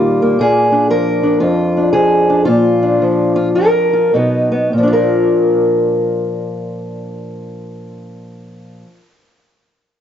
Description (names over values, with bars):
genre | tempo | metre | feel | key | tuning
acoustic country blues, solo or duo | 100-118 BPM | 4/4 | swing 64% on 8ths | Bb mixolydian | A4 = 440 Hz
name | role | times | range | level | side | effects
fingerpicked steel-string acoustic guitar | solo | 0.0-9.0 s | F2 to Bb4 | -12 LUFS | equal | cassette tape
room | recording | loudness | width
light reverb, small room reverb | home recording on cassette, nothing above 7.7 kHz | -11 LUFS | side -9 dB against mid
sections
0.0-4.7 A section; 4.7-9.5 B section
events
slowing down 0.4-4.7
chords
0.4 Bb; 4.1 B; 4.7 Bb